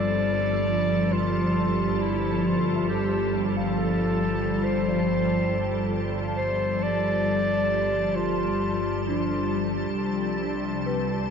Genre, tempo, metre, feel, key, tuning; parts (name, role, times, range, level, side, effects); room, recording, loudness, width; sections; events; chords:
ambient; 68 BPM; 4/4; straight; G mixolydian; A4 = 440 Hz
clear clarinet; melody; 0.0-9.7 s; E4 to D5; -28 LUFS; equal; diffuse ambient delay
soft additive organ-like pad; sustained chords; 0.0-11.3 s; C3 to A5; -26 LUFS; equal; ensemble chorus, built-in reverb
celesta; arpeggios; 0.0-11.3 s; C4 to A5; -37 LUFS; left 2 dB; diffuse ambient delay
rich studio double bass section; bass; 0.0-11.3 s; G1 to C2; -31 LUFS; equal; tube saturation
overtone-sweeping drone; drone; 0.0-11.3 s; G3; -35 LUFS; left 1 dB; chorus, built-in reverb
wet cathedral reverb, RT60 4.9 s; dark, warm production, nothing above 7.7 kHz; -22 LUFS; side -6 dB against mid
0.0-11.3 A section
fade-in on celesta 0.0-11.3
0.0 G9sus4; 9.9 C5